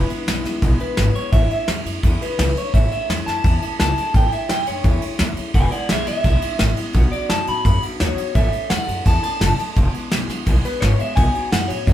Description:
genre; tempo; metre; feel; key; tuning
rockabilly; 171 BPM; 4/4; straight; E major; A4 = 440 Hz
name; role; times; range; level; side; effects
electric guitar through a small old amp; melody; 0.0-11.9 s; G#4 to B5; -24 LUFS; left 1 dB; spring reverb, slapback echo
picked steel-string acoustic guitar; accompaniment; 0.0-11.9 s; E2 to A4; -29 LUFS; left 3 dB; none
upright bass; bass; 0.0-11.9 s; E1 to A2; -21 LUFS; equal; none
soft brush drum kit; drums; 0.1-11.9 s; kick drum, ride cymbal, snare drum; -20 LUFS; equal; none
room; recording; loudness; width
light reverb; band playing live in one room; -16 LUFS; side -12 dB against mid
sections
0.0-11.9 A section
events
clean electric guitar solo 0.0-11.9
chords
0.0 E; 1.3 A; 5.5 E; 6.9 B; 8.4 A; 9.8 E; 11.2 B

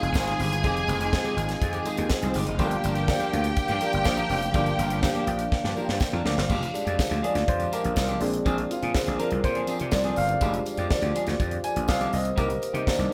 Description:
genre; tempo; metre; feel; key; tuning
disco; 123 BPM; 4/4; straight; F dorian; A4 = 439 Hz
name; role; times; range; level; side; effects
clear studio string section; second line; 0.0-6.2 s; C4 to Ab5; -33 LUFS; equal; none
clean electric guitar; accompaniment; 0.0-13.1 s; Eb3 to Bb4; -36 LUFS; equal; none
clear baby grand piano; accompaniment; 0.0-13.1 s; Eb3 to Ab5; -32 LUFS; equal; none
warm French horn section; sustained chords; 0.0-13.1 s; Eb3 to F5; -35 LUFS; equal; none
gritty slap bass; bass; 0.0-13.1 s; F1 to C3; -31 LUFS; equal; overdrive
tight funk drum kit; drums; 0.0-13.1 s; crash cymbal, hi-hat, kick drum, snare drum; -31 LUFS; equal; none
tambourine; percussion; 0.1-13.0 s; none; -47 LUFS; equal; none
room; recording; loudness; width
moderate large studio reverb, RT60 1.2 s; band playing live in one room; -25 LUFS; mono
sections
0.0-6.5 A section; 6.5-13.1 B section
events
drum fill 5.5-6.5; grand piano fill 5.8-6.5; grand piano solo 6.5-13.1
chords
0.0 Fm9; 2.6 Gm7; 6.5 Fm69; 8.2 Bb9; 10.4 Fm69; 12.1 Cm7

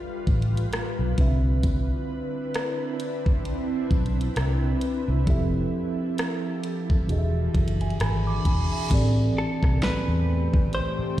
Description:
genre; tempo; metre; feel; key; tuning
contemporary R&B; 66 BPM; 4/4; swing 58% on 16ths; E phrygian; A4 = 440 Hz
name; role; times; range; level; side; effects
mellow tine electric piano; accompaniment; 0.0-11.2 s; A2 to D6; -29 LUFS; right 2 dB; medium stereo tremolo
ethereal airy pad; sustained chords; 0.0-11.2 s; E3 to B4; -32 LUFS; equal; ensemble chorus, built-in reverb
vintage muted fingered electric bass; bass; 0.3-11.0 s; E1 to E2; -24 LUFS; equal; none
smooth R&B drum kit; drums; 0.3-11.0 s; crash cymbal, hi-hat, kick drum, rim click, snare drum; -24 LUFS; equal; vintage 12-bit sampler grit
reverse cymbal; sound effects; 7.6-8.9 s; none; -39 LUFS; right 4 dB; none
direct-recorded clean electric guitar; melody; 9.4-11.2 s; A4 to C5; -30 LUFS; equal; digital delay
room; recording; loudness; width
light reverb, digital ambience; played on a big sound system in a bare room, stone room reverb; -22 LUFS; side -13 dB against mid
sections
0.0-8.9 A section; 8.9-11.2 B section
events
reverse cymbal 7.6-8.9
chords
0.0 G13; 1.2 Cmaj9; 5.3 Fmaj9; 7.1 E7; 8.9 Am11

